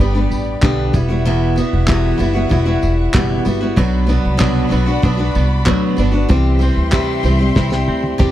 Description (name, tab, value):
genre	acoustic pop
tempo	95 BPM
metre	4/4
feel	straight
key	unclear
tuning	A4 = 440 Hz
part	picked steel-string acoustic guitar	accompaniment	0.0-8.3 s	E2 to G4	-17 LUFS	equal	none
part	warm studio string section	sustained chords	0.0-8.3 s	F#4 to C6	-28 LUFS	left 2 dB	none
part	upright bass	bass	0.0-8.3 s	E1 to E2	-17 LUFS	equal	none
part	cloth-damped thuddy drum kit	drums	0.0-8.3 s	handclaps, kick drum, snare drum, tambourine, toms	-16 LUFS	equal	none
part	twelve-string electric guitar	arpeggios	3.8-8.3 s	F#3 to G4	-25 LUFS	right 4 dB	slapback echo
room	little or no reverb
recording	dry, close 1970s-style studio recording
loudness	-13 LUFS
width	side -13 dB against mid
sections	0.0-8.3 A section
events	drum fill 7.6-8.3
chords	0.0 G; 0.9 Emadd9; 3.8 Bm; 6.3 C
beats	0.00 0.63 | 1.26 1.89 2.52 3.15 | 3.78 4.41 5.04 5.67 | 6.30 6.93 7.56 8.20